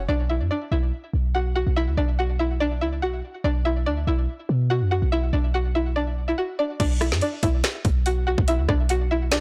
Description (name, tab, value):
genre	hip hop, trap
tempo	143 BPM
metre	4/4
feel	half-time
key	B minor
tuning	A4 = 440 Hz
part	string-like resonator pluck	melody	0.0-9.4 s	D4 to F#5	-28 LUFS	equal	chorus, low-pass filter, delay
part	clean 808-style bass	bass	0.0-9.4 s	B1 to B2	-25 LUFS	equal	none
part	trap drum kit	drums	6.8-9.4 s	crash cymbal, finger snaps, hi-hat, kick drum, rim click, snare drum	-26 LUFS	equal	soft clipping on snare
room	little or no reverb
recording	blown-out, overdriven recording, overdrive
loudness	-23 LUFS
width	mono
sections	0.1-6.8 A section; 6.8-9.4 B section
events	none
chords	0.1 Bm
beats	| 0.09 0.51 0.93 1.34 | 1.76 2.18 2.60 3.02 | 3.44 3.86 4.28 4.70 | 5.12 5.54 5.96 6.38 | 6.80 7.22 7.64 8.06 | 8.48 8.90 9.32